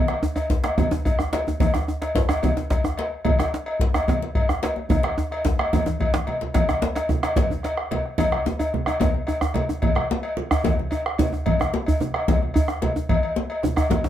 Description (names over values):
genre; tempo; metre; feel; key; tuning
west african traditional, West African drum ensemble; 146 BPM (dotted quarters); 12/8; straight; none; none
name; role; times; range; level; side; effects
bombo; percussion; 0.1-14.0 s; none; -25 LUFS; equal; none
cowbell; percussion; 0.1-14.0 s; none; -27 LUFS; left 2 dB; none
djembe; percussion; 0.1-14.0 s; none; -27 LUFS; left 2 dB; none
djembe; percussion; 0.2-14.1 s; none; -25 LUFS; right 1 dB; none
congas; percussion; 0.8-14.1 s; none; -26 LUFS; right 2 dB; none
room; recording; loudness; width
wet studio reverb, RT60 0.5 s; heard from further back in the room; -20 LUFS; side -11 dB against mid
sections
0.0-6.5 A section; 6.5-14.1 A section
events
drum fill 4.9-6.5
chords
none